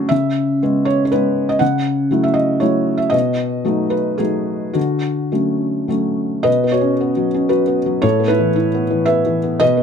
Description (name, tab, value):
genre	neoclassical minimalist piano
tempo	103-122 BPM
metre	3/4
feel	rubato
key	unclear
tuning	A4 = 440 Hz
part	felt-muted upright piano	solo	0.0-9.8 s	A2 to F#5	-15 LUFS	equal	none
room	light reverb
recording	close, detailed microphones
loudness	-15 LUFS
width	side -7 dB against mid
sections	0.0-6.5 A section; 6.5-9.8 B section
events	none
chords	0.1 C#m7; 1.6 F#m7/C#; 3.1 B7; 4.8 Dmaj7; 6.5 Bsus2; 8.0 Asus2